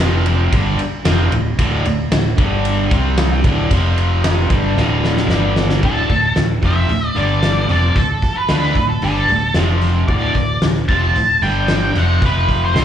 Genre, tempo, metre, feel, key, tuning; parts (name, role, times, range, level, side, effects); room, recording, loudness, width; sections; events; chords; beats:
classic rock; 113 BPM; 4/4; straight; A4 = 440 Hz
cranked stack guitar; riff; 0.0-12.8 s; D2 to D4; -22 LUFS; left 10 dB; overdrive, slapback echo
cranked stack guitar; riff; 0.0-12.8 s; D2 to D4; -22 LUFS; right 9 dB; overdrive, slapback echo
fingered electric bass; bass; 0.0-12.8 s; D1 to D2; -18 LUFS; equal
huge arena drum kit; drums; 0.0-12.8 s; crash cymbal, hi-hat, kick drum, ride cymbal, snare drum; -19 LUFS; equal
octave-fuzz lead guitar; melody; 5.8-12.8 s; A4 to A5; -19 LUFS; equal; wah, distortion, slapback echo
light reverb, small room reverb; live gig heard through the venue's PA, cassette tape, club reverb; -13 LUFS; side -9 dB against mid
0.0-5.8 A section; 5.8-12.8 B section
drum fill 4.8-5.8
0.0 F5; 0.5 D5; 2.4 G5; 2.9 C5; 3.4 D5; 3.7 F5; 4.5 D5; 5.3 G5; 5.8 D5; 7.2 G5; 7.7 D5; 9.6 F5; 10.1 D5; 11.4 G5; 12.0 F5
0.00 0.53 1.06 | 1.59 2.12 2.65 3.18 | 3.71 4.24 4.77 5.30 | 5.83 6.37 6.90 7.43 | 7.96 8.50 9.03 9.56 | 10.10 10.63 11.16 11.69 | 12.23 12.76